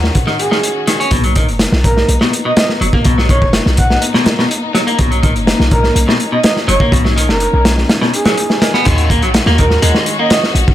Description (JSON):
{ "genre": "breakbeat, breaks", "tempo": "124 BPM", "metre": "4/4", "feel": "straight", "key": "unclear", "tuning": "A4 = 439 Hz", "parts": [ { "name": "warm studio string section", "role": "sustained chords", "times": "0.0-10.7 s", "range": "Eb3 to Gb4", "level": "-21 LUFS", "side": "left 3 dB", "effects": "sidechain pumping" }, { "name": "warm 808-style bass", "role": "bass", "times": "0.0-10.6 s", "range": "F#1 to Eb2", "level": "-15 LUFS", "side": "equal", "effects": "tube saturation" }, { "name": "crunchy breakbeat drum kit", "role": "drums", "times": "0.0-10.7 s", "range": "crash cymbal, hi-hat, kick drum, snare drum", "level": "-14 LUFS", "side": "equal", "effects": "none" }, { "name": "clean electric guitar", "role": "riff", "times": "0.3-10.3 s", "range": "B2 to Db4", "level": "-18 LUFS", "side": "left 1 dB", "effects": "ping-pong delay" }, { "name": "breathy flute-like synth lead", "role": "melody", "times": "0.4-10.4 s", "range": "Ab4 to F#5", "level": "-19 LUFS", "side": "right 2 dB", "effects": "chorus, small speaker sound, ping-pong delay" } ], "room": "light reverb", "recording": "none", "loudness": "-10 LUFS", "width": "side -12 dB against mid", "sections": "0.0-8.9 A section; 8.9-10.7 B section", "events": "drop 8.9-10.7", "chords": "0.0 Ebm7; 1.1 Bmaj7; 8.9 Ebm7" }